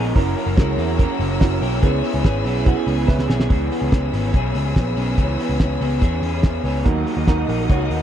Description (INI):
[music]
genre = jangly indie pop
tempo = 143 BPM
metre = 4/4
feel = straight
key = C# dorian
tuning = A4 = 440 Hz
[part]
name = raw garage guitar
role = accompaniment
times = 0.0-8.0 s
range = F#2 to A#4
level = -28 LUFS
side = right 3 dB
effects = overdrive
[part]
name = warm upright piano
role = accompaniment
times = 0.0-3.5, 6.8-8.0 s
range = A#3 to G#5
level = -25 LUFS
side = right 12 dB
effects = none
[part]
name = dark studio string section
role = sustained chords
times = 0.0-8.0 s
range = B3 to E6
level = -31 LUFS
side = left 4 dB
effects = none
[part]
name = electric guitar through a small old amp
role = arpeggios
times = 0.0-8.0 s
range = E3 to A#4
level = -24 LUFS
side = left 3 dB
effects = lush chorus, tape echo
[part]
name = vintage muted picked electric bass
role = bass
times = 0.0-8.0 s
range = F#1 to E2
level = -22 LUFS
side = equal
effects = none
[part]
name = cloth-damped thuddy drum kit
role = drums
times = 0.2-8.0 s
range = hi-hat, kick drum, snare drum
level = -17 LUFS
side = equal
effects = none
[sound]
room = little or no reverb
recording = dry, close 1970s-style studio recording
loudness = -17 LUFS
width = side -10 dB against mid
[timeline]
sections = 0.0-3.5 A section; 3.5-8.0 B section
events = upright piano fill 2.9-3.5; drum fill 3.1-3.5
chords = 0.2 F#7; 1.8 C#m7; 6.9 D#m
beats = | 0.16 0.58 0.99 1.41 | 1.83 2.25 2.67 3.09 | 3.51 3.92 4.34 4.76 | 5.18 5.60 6.02 6.44 | 6.86 7.28 7.70